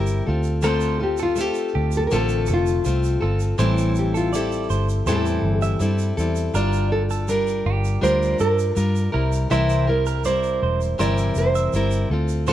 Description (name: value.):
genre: acoustic pop.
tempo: 81 BPM.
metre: 4/4.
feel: straight.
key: unclear.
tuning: A4 = 440 Hz.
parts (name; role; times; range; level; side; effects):
nylon-string guitar; melody; 0.0-12.1 s; F4 to E5; -24 LUFS; right 1 dB; plate reverb, digital delay.
fingerpicked plugged-in steel-string acoustic guitar; accompaniment; 0.0-12.5 s; A2 to Bb4; -24 LUFS; left 2 dB; none.
vintage muted fingered electric bass; bass; 0.0-12.5 s; E1 to G2; -22 LUFS; equal; none.
tube shaker; percussion; 0.1-12.5 s; none; -40 LUFS; right 7 dB; none.
direct-recorded clean electric guitar; arpeggios; 0.6-12.5 s; G4 to E5; -31 LUFS; right 7 dB; spring reverb.
room: light reverb.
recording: worn, warbling old tape, cassette tape, warbly pitch drift.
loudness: -19 LUFS.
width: side -12 dB against mid.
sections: 0.0-12.5 A section.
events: none.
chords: 0.3 Dm7; 3.6 Am7; 6.6 Gm7; 9.1 C7.